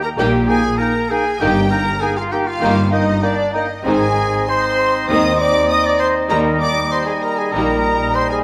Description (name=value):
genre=quick classical-period movement for symphony orchestra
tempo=98 BPM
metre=4/4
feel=rubato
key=Eb major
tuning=A4 = 439 Hz
part: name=clear symphonic violin section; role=melody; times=0.0-8.4 s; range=D5 to Eb6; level=-29 LUFS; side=equal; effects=none
part: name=bright flute section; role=second line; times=0.0-8.4 s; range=D5 to Eb6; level=-28 LUFS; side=equal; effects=none
part: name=dark trumpet section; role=stabs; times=0.0-8.4 s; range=D4 to Eb5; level=-22 LUFS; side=equal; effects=none
part: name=clear clarinet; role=second line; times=0.2-8.4 s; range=Eb4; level=-29 LUFS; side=equal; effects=none
part: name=clear oboe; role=second line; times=0.2-8.4 s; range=Eb5 to G5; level=-27 LUFS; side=equal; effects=none
part: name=rich chamber violin section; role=second line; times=0.2-7.8 s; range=Bb3 to G4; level=-31 LUFS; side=equal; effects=none
part: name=mellow bassoon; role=accompaniment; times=0.2-8.4 s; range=G3 to C4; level=-27 LUFS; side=equal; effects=none
part: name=rich chamber viola section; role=accompaniment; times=0.2-7.8 s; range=Eb3 to Bb3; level=-28 LUFS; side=equal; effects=none
part: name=mellow French horn section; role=sustained chords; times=0.2-7.8 s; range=G3 to G4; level=-27 LUFS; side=equal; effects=none
part: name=rich chamber double bass section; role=bass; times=0.2-8.1 s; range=G1 to Eb2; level=-27 LUFS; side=equal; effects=none
part: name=rich symphonic cello section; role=bass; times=0.2-8.1 s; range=Eb2 to Bb2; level=-26 LUFS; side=equal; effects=none
room=wet scoring stage reverb, RT60 1.5 s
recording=none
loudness=-17 LUFS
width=mono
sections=0.0-8.4 A section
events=none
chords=0.0 Eb; 1.4 Eb/G; 3.9 Ab; 6.3 Eb